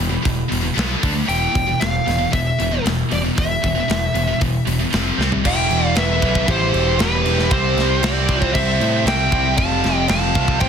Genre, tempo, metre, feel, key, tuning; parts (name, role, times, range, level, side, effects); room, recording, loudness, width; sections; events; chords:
heavy metal; 116 BPM; 4/4; straight; E phrygian; A4 = 440 Hz
scooped high-gain guitar; riff; 0.0-10.7 s; E2 to D4; -23 LUFS; left 13 dB; distortion
scooped high-gain guitar; riff; 0.0-10.7 s; E2 to D4; -24 LUFS; right 11 dB; distortion
growling picked electric bass; bass; 0.0-10.7 s; E1 to A2; -22 LUFS; equal; overdrive
tight metal drum kit; drums; 0.3-10.7 s; crash cymbal, hi-hat, kick drum, snare drum, toms; -22 LUFS; equal; soft clipping on kick
high-gain lead guitar; melody; 1.3-10.7 s; B4 to A5; -22 LUFS; right 1 dB; distortion, digital delay
high-gain lead guitar; second line; 5.5-10.7 s; G4 to F5; -26 LUFS; right 6 dB; distortion
little or no reverb; dense, heavily limited modern master; -16 LUFS; side -7 dB against mid
0.0-5.4 A section; 5.4-10.7 B section
drum fill 5.2
0.0 E5; 0.8 B5; 1.0 D5; 1.3 E5; 4.9 F5; 5.2 C5; 5.4 Em; 7.5 C; 9.6 F